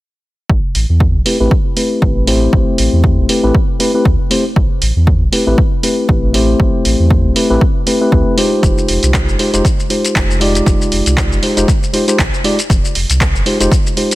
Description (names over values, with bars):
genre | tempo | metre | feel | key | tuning
deep house | 118 BPM | 4/4 | swing 56% on 16ths | unclear | A4 = 440 Hz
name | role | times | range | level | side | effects
sub bass with octave | bass | 0.5-13.7 s | F1 to E2 | -15 LUFS | equal | sidechain pumping
electronic kick drum | drums | 0.5-13.8 s | none | -14 LUFS | equal | overdrive
punchy analog drum machine | drums | 0.8-14.2 s | handclaps, hi-hat, shaker | -18 LUFS | equal | none
mellow tine electric piano | stabs | 1.3-14.2 s | G#3 to D5 | -15 LUFS | left 1 dB | vintage 12-bit sampler grit, sidechain pumping, low-pass filter, ping-pong delay
room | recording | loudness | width
little or no reverb | none | -10 LUFS | side -18 dB against mid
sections
0.5-14.2 A section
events
filter sweep on tine electric piano 0.5-14.2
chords
0.5 Am9; 8.6 Fm9